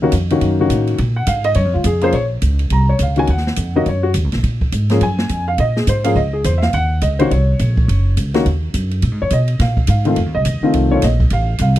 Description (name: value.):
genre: jazz piano trio.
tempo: 209 BPM.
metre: 4/4.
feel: swing 61% on 8ths.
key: Bb minor.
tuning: A4 = 441 Hz.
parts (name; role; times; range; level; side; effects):
dark upright piano; melody; 0.0-11.8 s; Eb3 to Bb5; -18 LUFS; left 2 dB; none.
upright bass; bass; 0.0-11.8 s; Gb1 to Cb3; -16 LUFS; equal; none.
open jazz drum kit; drums; 0.1-11.8 s; hi-hat, kick drum, ride cymbal, snare drum; -23 LUFS; right 1 dB; none.
room: small room ambience.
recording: dry, close 1970s-style studio recording.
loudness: -14 LUFS.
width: side -14 dB against mid.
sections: 0.0-2.1 A section; 2.1-11.8 A section.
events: upright piano solo 0.0-11.8.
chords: 0.0 Ebm7; 1.0 Bbm7; 2.1 Bbm; 3.3 Ebm7; 4.4 Bbm7; 6.7 Ebm7; 9.0 Bb5; 10.2 F7.